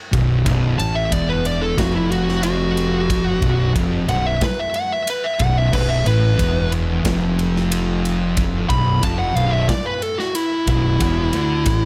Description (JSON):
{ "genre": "stoner and doom metal", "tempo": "91 BPM", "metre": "4/4", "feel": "straight", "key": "unclear", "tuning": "A4 = 440 Hz", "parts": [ { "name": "thick fuzz guitar", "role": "riff", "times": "0.1-11.9 s", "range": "B1 to D3", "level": "-24 LUFS", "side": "equal", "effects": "distortion" }, { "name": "thick fuzz guitar", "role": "riff", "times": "0.1-11.9 s", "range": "B1 to D3", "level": "-26 LUFS", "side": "equal", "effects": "none" }, { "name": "fuzz fingered electric bass", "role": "bass", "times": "0.1-11.9 s", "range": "B0 to D2", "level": "-26 LUFS", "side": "equal", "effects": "overdrive, tube saturation" }, { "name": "big rock drum kit", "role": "drums", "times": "0.1-11.8 s", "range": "crash cymbal, kick drum, ride cymbal, snare drum", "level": "-26 LUFS", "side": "equal", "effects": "none" }, { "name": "fuzz lead guitar", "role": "melody", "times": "0.8-11.9 s", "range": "E4 to B5", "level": "-24 LUFS", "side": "equal", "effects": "distortion, analog delay" } ], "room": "small room ambience", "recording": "none", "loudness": "-19 LUFS", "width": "mono", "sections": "0.0-11.9 A section", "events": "lead electric guitar solo 0.0-11.9", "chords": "0.0 B5; 11.0 F#m7b13/E (rootless)" }